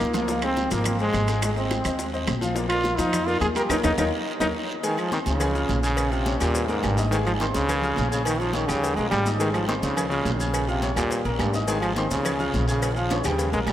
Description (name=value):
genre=latin, salsa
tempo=211 BPM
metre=4/4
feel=straight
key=Ab major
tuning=A4 = 445 Hz
part: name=bright trombone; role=melody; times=0.0-13.7 s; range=G2 to Bb4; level=-25 LUFS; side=equal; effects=none
part: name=bright upright piano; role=accompaniment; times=0.0-13.7 s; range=F3 to Ab6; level=-29 LUFS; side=left 2 dB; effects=none
part: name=upright bass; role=bass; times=0.0-13.7 s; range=Ab1 to F2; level=-28 LUFS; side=equal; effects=none
part: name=claves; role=percussion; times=0.0-13.7 s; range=none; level=-40 LUFS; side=left 5 dB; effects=none
part: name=congas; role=percussion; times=0.0-13.7 s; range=none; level=-34 LUFS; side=left 1 dB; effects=none
part: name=guiro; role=percussion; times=0.0-13.7 s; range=none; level=-38 LUFS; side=right 4 dB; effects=none
part: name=maracas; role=percussion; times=0.0-13.7 s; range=none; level=-39 LUFS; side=left 3 dB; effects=none
part: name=bongos and cowbell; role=percussion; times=0.1-13.7 s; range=none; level=-35 LUFS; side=left 4 dB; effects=none
part: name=timbales and agogo bells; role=percussion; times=0.1-13.7 s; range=none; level=-34 LUFS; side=right 6 dB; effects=none
room=wet cathedral reverb, RT60 5.9 s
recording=in a vast, echoing space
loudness=-21 LUFS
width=side -12 dB against mid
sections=0.0-4.8 A section; 4.8-13.7 B section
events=drum fill 0.0, 3.7-4.8, 13.1-13.7; band accent 3.7-4.8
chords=0.3 Dbmaj7; 1.4 Abadd9; 2.6 Bb; 3.7 Eb5; 4.8 Ab; 5.4 Db; 6.0 Bbm7; 6.6 Eb; 7.1 Ab; 7.7 Db; 8.3 Bbm7; 8.8 Eb; 9.4 Ab; 10.0 Db; 10.5 Bbm7; 11.1 Eb; 11.7 Ab; 12.3 Db; 12.8 Bbm7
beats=0.00 | 0.28 0.57 0.85 1.14 | 1.42 1.71 1.99 2.28 | 2.56 2.85 3.13 3.42 | 3.70 3.98 4.27 4.55 | 4.84 5.12 5.41 5.70 | 5.98 6.27 6.55 6.84 | 7.12 7.41 7.69 7.98 | 8.26 8.55 8.83 9.12 | 9.40 9.69 9.97 10.26 | 10.54 10.83 11.11 11.40 | 11.68 11.97 12.25 12.54 | 12.82 13.10 13.39 13.67